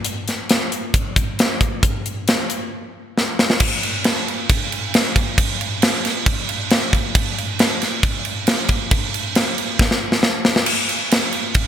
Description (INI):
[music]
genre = rock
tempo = 136 BPM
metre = 4/4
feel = straight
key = none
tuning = none
[part]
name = tight metal drum kit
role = drums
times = 0.0-11.7 s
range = crash cymbal, hi-hat, kick drum, snare drum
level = -16 LUFS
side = equal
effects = none
[sound]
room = light reverb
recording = bright 1980s-style digital production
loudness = -16 LUFS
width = side -9 dB against mid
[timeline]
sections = 0.0-3.6 A section; 3.6-11.7 B section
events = drum fill 3.2-3.6, 9.8-10.7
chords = none